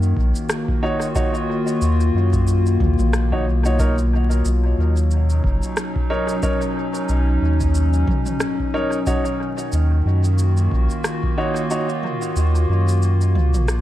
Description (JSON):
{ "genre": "ambient dub", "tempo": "91 BPM", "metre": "4/4", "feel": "swing 57% on 16ths", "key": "Eb minor", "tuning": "A4 = 440 Hz", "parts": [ { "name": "warbly tape-like pad", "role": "sustained chords", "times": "0.0-13.8 s", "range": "B2 to Gb4", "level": "-24 LUFS", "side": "left 1 dB", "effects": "chorus, built-in reverb" }, { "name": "warm sub bass", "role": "bass", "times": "0.0-13.8 s", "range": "F#1 to Gb2", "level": "-17 LUFS", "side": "equal", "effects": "none" }, { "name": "organic electronic drum kit", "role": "drums", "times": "0.0-13.8 s", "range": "rim click, shaker, toms", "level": "-29 LUFS", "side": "equal", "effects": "dub echo" }, { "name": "electronic kick drum", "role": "drums", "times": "0.2-11.3 s", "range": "none", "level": "-24 LUFS", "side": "equal", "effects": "none" }, { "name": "warm upright piano", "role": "stabs", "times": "0.8-11.9 s", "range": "Eb4 to Db5", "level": "-27 LUFS", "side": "right 1 dB", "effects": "dub echo" } ], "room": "light reverb, digital ambience", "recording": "vinyl crackle", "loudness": "-17 LUFS", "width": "side -14 dB against mid", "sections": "0.0-13.8 A section", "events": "kick drops out 11.7-13.8", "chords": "0.0 Ebm7; 3.8 Bmaj9; 9.1 Ebm7" }